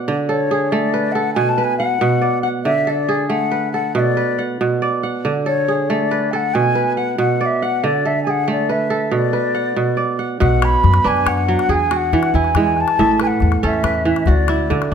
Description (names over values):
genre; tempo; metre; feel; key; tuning
west african traditional, West African string and xylophone music; 93 BPM (dotted quarters); 12/8; straight; unclear; A4 = 437 Hz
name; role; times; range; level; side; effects
kora; arpeggios; 0.0-14.9 s; A2 to F#5; -18 LUFS; right 3 dB; none
mellow wooden flute; melody; 0.3-14.8 s; C#5 to B5; -19 LUFS; left 2 dB; none
upright bass; bass; 10.4-14.9 s; A1 to F#2; -19 LUFS; left 1 dB; none
calabash; percussion; 10.4-14.9 s; none; -23 LUFS; left 6 dB; none
room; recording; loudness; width
moderate recital hall reverb, RT60 1.4 s; none; -15 LUFS; side -7 dB against mid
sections
0.0-10.4 A section; 10.4-14.9 B section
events
none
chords
0.1 D; 1.4 Bm; 2.7 D; 4.0 Bm; 5.2 D; 6.5 Bm; 7.8 D; 9.1 Bm; 11.7 E; 13.0 A; 14.3 D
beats
| 0.06 0.71 1.36 2.01 | 2.65 3.30 3.95 4.60 | 5.25 5.89 6.54 7.19 | 7.83 8.48 9.12 9.77 | 10.41 11.06 11.70 12.35 | 12.99 13.63 14.27 14.91